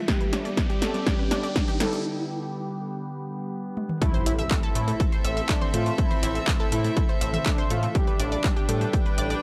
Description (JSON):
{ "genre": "melodic techno", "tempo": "122 BPM", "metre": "4/4", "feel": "straight", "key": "A minor", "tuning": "A4 = 438 Hz", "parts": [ { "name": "evolving wavetable pad", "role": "sustained chords", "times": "0.0-9.4 s", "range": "C3 to G4", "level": "-37 LUFS", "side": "equal", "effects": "phaser, built-in reverb, sidechain pumping" }, { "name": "riser and impact", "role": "sound effects", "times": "0.0-6.0 s", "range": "none", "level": "-36 LUFS", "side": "equal", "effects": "none" }, { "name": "rich studio string section", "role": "texture", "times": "0.0-9.4 s", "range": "B3 to G5", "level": "-36 LUFS", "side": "equal", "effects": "sidechain pumping" }, { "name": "analog synth brass", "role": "melody", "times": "0.1-9.0 s", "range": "D4 to A4", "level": "-36 LUFS", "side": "equal", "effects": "chorus, cassette tape, sidechain pumping, tape echo" }, { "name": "analog pluck", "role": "arpeggios", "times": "0.1-9.4 s", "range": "G3 to E6", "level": "-35 LUFS", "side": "equal", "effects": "chorus, sidechain pumping, analog delay" }, { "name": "electronic kick drum", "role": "drums", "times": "0.1-9.0 s", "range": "none", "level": "-27 LUFS", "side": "equal", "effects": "overdrive, studio reverb" }, { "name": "techno drum kit", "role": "drums", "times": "0.1-9.4 s", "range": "handclaps, hi-hat, snare drum, toms", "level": "-33 LUFS", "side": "equal", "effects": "overdrive, studio reverb" }, { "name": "gritty driven synth bass", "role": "bass", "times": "0.3-9.3 s", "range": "A1 to A2", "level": "-31 LUFS", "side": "equal", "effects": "sidechain pumping, high-pass filter" } ], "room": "digital ambience", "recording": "dry, gritty hardware recording, transformer saturation", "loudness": "-25 LUFS", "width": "mono", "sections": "0.0-4.0 A section; 4.0-9.4 B section", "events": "build-up 0.0-4.0; drum fill 0.0-2.0, 3.8; riser 0.0-2.0; filter sweep on synth arpeggio sound 0.0-4.0; filter sweep on analog polysynth 0.0-4.0; filter sweep on ambient pad 0.0-4.0; break 2.0-4.0; drop 4.0-9.4; impact 4.0-6.0", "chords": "0.1 G/A; 4.0 Am; 8.0 G/A" }